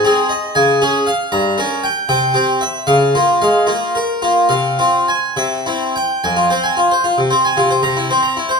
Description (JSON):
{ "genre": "classical, baroque-style suite movement for harpsichord", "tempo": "68-79 BPM (dotted quarters)", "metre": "6/8", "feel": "rubato", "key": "F minor", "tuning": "A4 = 440 Hz", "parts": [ { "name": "harpsichord", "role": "solo", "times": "0.0-8.6 s", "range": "F2 to Bb5", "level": "-13 LUFS", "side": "equal", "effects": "none" } ], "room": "wet recital hall reverb, RT60 1.4 s", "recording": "minimal, uncompressed stereo recording", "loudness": "-13 LUFS", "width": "side -4 dB against mid", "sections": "0.0-6.2 A section; 6.2-8.6 B section", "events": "none", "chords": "0.0 Ab; 0.6 Db; 1.3 Gdim; 2.1 C; 2.9 Bbm/Db; 4.5 Fm/C; 5.4 C; 6.2 Fm; 7.8 C7" }